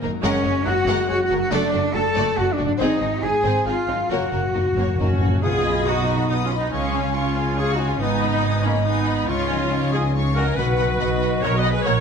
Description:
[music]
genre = cinematic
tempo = 140 BPM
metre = 3/4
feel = straight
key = Gb lydian, B lydian from 5.4 s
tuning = A4 = 440 Hz
[part]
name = warm symphonic violin section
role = melody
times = 0.0-11.9 s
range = Eb4 to D#6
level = -31 LUFS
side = left 7 dB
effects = none
[part]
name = rich symphonic violin section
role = second line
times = 0.0-11.9 s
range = C4 to B5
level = -32 LUFS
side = left 2 dB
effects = none
[part]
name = rich symphonic viola section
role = accompaniment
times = 0.0-12.0 s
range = Ab3 to D#5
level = -26 LUFS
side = right 1 dB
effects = none
[part]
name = concert harp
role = arpeggios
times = 0.0-12.0 s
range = Gb2 to D#5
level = -30 LUFS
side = left 8 dB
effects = none
[part]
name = rich symphonic double bass section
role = bass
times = 0.0-12.0 s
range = Gb1 to C#2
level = -26 LUFS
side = right 4 dB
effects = none
[part]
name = mellow French horn section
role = sustained chords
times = 0.2-12.0 s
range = F#3 to A4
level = -29 LUFS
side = left 6 dB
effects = none
[part]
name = mellow trumpet section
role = stabs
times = 0.2-12.0 s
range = G#3 to A5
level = -27 LUFS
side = right 1 dB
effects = none
[part]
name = warm studio cello section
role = bass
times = 0.2-12.0 s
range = G#2 to A4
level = -26 LUFS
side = right 2 dB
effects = none
[part]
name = timpani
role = percussion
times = 0.2-0.8, 4.1-6.0, 10.6-11.2 s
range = Gb2 to B2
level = -26 LUFS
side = left 1 dB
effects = none
[part]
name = warm clarinet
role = second line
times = 5.0-12.0 s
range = C#4 to D#5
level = -31 LUFS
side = left 2 dB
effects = none
[part]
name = mellow large flute ensemble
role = second line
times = 5.4-12.0 s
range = A#4 to F#5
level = -31 LUFS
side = left 4 dB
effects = none
[sound]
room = moderate scoring stage reverb, RT60 1.7 s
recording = nothing above 10.7 kHz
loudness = -18 LUFS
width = side -6 dB against mid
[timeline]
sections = 0.0-5.4 A section; 5.4-12.0 B section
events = timpani fill 4.1-5.4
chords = 0.2 Gbadd9; 1.5 D/F#; 2.8 Ab; 4.1 Gb; 5.4 B; 6.7 C#; 8.0 G#m; 9.3 C#add9; 10.6 B

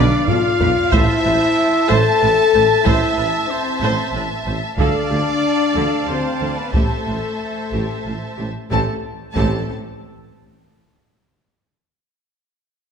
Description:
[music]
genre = cinematic, epic orchestral film score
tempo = 93 BPM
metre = 3/4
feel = straight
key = A minor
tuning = A4 = 439 Hz
[part]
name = warm symphonic violin section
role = melody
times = 0.0-9.7 s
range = A4 to A5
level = -28 LUFS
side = left 2 dB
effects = none
[part]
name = warm symphonic violin section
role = second line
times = 0.0-9.7 s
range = A4 to A5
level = -25 LUFS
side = equal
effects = none
[part]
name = rich symphonic viola section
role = accompaniment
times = 0.0-9.7 s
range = C4 to D5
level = -27 LUFS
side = right 3 dB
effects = none
[part]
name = mellow French horn section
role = sustained chords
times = 0.0-9.0 s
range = A3 to A4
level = -19 LUFS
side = left 5 dB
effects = none
[part]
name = clear trumpet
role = stabs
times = 0.0-9.6 s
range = A4 to A5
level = -24 LUFS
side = right 3 dB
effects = none
[part]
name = clear symphonic double bass section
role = bass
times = 0.0-9.7 s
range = A1 to D2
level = -25 LUFS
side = right 3 dB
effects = none
[part]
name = mellow tuba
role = bass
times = 0.0-9.6 s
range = A1 to D2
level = -27 LUFS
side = right 4 dB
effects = none
[part]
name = warm symphonic cello section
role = bass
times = 0.0-9.7 s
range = A2 to D3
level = -26 LUFS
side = right 2 dB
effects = none
[part]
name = taiko ensemble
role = drums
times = 0.3-10.6 s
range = none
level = -21 LUFS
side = equal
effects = none
[sound]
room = wet scoring stage reverb, RT60 1.7 s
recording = none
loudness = -15 LUFS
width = side -6 dB against mid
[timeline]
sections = 0.0-8.7 A section; 8.7-10.7 B section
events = drum fill 0.0-0.9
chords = 0.0 Bdim; 0.9 Am; 4.8 Dm; 6.7 Am7

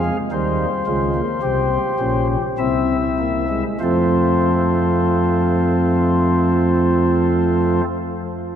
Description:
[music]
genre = classical, baroque-style 4-part fugue for pipe organ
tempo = 48-56 BPM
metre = 4/4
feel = straight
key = unclear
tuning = A4 = 441 Hz
[part]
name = pipe organ, flutes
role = solo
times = 0.0-7.8 s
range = Bb1 to F5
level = -16 LUFS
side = equal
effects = none
[sound]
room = wet cathedral reverb, RT60 5.4 s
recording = in a vast, echoing space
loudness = -16 LUFS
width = side -9 dB against mid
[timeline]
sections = 0.0-3.8 A section; 3.8-8.6 B section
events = slowing down 0.0-3.8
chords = 0.0 Fm; 1.4 C7; 3.8 F

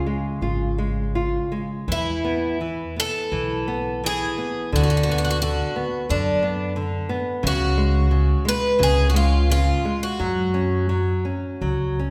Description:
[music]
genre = fado-style ballad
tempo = 86 BPM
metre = 4/4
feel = uneven beats, rubato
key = unclear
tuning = A4 = 440 Hz
[part]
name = picked twelve-string acoustic guitar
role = melody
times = 0.0-12.1 s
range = D4 to B4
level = -27 LUFS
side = equal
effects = none
[part]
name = nylon-string guitar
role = accompaniment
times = 0.0-12.1 s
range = C#3 to E#4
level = -28 LUFS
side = equal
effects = none
[part]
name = upright bass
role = bass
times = 0.4-12.1 s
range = G#1 to F#2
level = -25 LUFS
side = equal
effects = none
[sound]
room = wet scoring stage reverb, RT60 1.6 s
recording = recorded in a church or concert hall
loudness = -22 LUFS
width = mono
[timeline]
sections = 0.0-12.1 A section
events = none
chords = 0.0 C#; 1.9 E; 4.7 Bm/D; 7.4 C#5; 10.2 F#5

